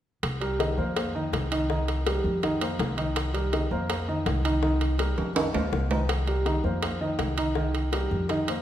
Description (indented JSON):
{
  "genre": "Afro-Cuban jazz",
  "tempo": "164 BPM",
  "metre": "4/4",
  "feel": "straight",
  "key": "unclear",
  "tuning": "A4 = 442 Hz",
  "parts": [
    { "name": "upright bass", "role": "bass", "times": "0.2-8.6 s", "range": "C2 to F2", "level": "-28 LUFS", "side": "equal", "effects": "none" },
    { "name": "bongos", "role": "percussion", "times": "0.2-8.6 s", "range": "none", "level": "-34 LUFS", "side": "left 6 dB", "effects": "none" },
    { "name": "timbales", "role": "percussion", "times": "0.2-8.6 s", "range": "none", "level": "-33 LUFS", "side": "right 4 dB", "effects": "none" },
    { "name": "warm concert grand piano", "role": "accompaniment", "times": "0.4-8.6 s", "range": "Eb3 to Eb5", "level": "-28 LUFS", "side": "right 1 dB", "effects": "none" }
  ],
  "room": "wet recital hall reverb, RT60 1.6 s",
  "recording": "recorded in a church or concert hall",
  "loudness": "-24 LUFS",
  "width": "side -11 dB against mid",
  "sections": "0.2-8.6 A section",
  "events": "drum fill 5.2-6.1",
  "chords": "0.2 Cm7; 1.0 F7sus4; 1.7 Cm7; 2.4 F7sus4; 3.2 Cm7; 3.9 F7sus4; 4.6 Cm7; 5.4 F7sus4; 6.1 Cm7; 6.8 F7sus4; 7.6 Cm7"
}